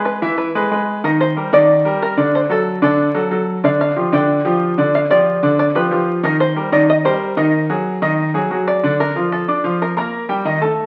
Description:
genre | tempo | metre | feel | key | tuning
latin | 185 BPM | 4/4 | straight | Bb major | A4 = 440 Hz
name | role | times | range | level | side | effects
open-back banjo | melody | 0.0-10.4 s | A4 to G5 | -20 LUFS | equal | none
clear baby grand piano | accompaniment | 0.0-10.9 s | D3 to D6 | -18 LUFS | equal | none
room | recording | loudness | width
wet large studio reverb, RT60 1.1 s | very old 78 rpm record, vinyl crackle | -16 LUFS | mono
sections
0.0-8.8 A section; 8.8-10.9 B section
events
none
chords
0.0 E; 1.0 Ebmaj7; 2.3 D; 3.6 G5; 6.2 Cm7; 7.5 Absus2; 8.8 Bbmaj7/D; 10.1 Eb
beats
0.06 0.38 0.71 | 1.03 1.36 1.68 2.01 | 2.33 2.66 2.98 3.31 | 3.63 3.96 4.28 4.61 | 4.93 5.26 5.58 5.91 | 6.23 6.56 6.88 7.21 | 7.53 7.86 8.18 8.51 | 8.83 9.15 9.48 9.80 | 10.13 10.45 10.78

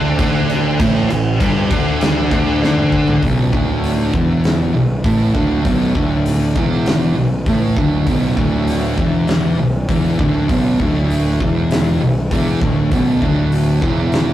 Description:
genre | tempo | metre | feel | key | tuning
stoner and doom metal | 99 BPM | 4/4 | straight | B minor | A4 = 443 Hz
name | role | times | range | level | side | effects
scooped high-gain guitar | riff | 0.0-3.2 s | G2 to D4 | -24 LUFS | left 1 dB | distortion
thick fuzz guitar | riff | 0.0-14.3 s | B1 to D4 | -21 LUFS | left 3 dB | distortion
thick fuzz guitar | riff | 0.0-14.3 s | B1 to D4 | -18 LUFS | right 3 dB | distortion
fuzz picked electric bass | bass | 0.0-14.3 s | B0 to D2 | -20 LUFS | left 1 dB | overdrive
big rock drum kit | drums | 0.2-14.3 s | crash cymbal, hi-hat, kick drum, snare drum, toms | -19 LUFS | left 1 dB | none
room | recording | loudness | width
moderate studio reverb, RT60 0.6 s | rough rehearsal-room recording, warm saturation | -13 LUFS | side -12 dB against mid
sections
0.0-3.2 A section; 3.2-14.3 B section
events
drum fill 2.6-3.2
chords
0.0 Gsus2; 3.2 Bm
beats
0.20 | 0.81 1.41 2.02 2.62 | 3.23 3.84 4.44 5.05 | 5.65 6.26 6.87 7.47 | 8.07 8.68 9.29 9.89 | 10.50 11.10 11.71 12.31 | 12.92 13.53 14.13

